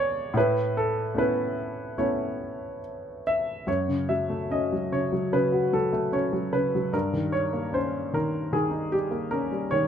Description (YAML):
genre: classical, lyrical solo piano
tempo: 74 BPM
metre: 4/4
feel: rubato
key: unclear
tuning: A4 = 440 Hz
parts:
  - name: dark grand piano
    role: solo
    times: 0.0-9.9 s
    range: E2 to E5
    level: -24 LUFS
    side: equal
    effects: none
room: moderate studio reverb, RT60 0.6 s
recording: minimal, uncompressed stereo recording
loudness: -24 LUFS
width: side -8 dB against mid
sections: 0.0-3.7 A section; 3.7-9.9 B section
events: none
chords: 0.4 Aadd9; 3.7 F#m; 6.9 D#7/G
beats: | 0.35 1.15 1.97 2.82 | 3.67 4.51 5.33 6.13 | 6.94 7.74 8.54 9.33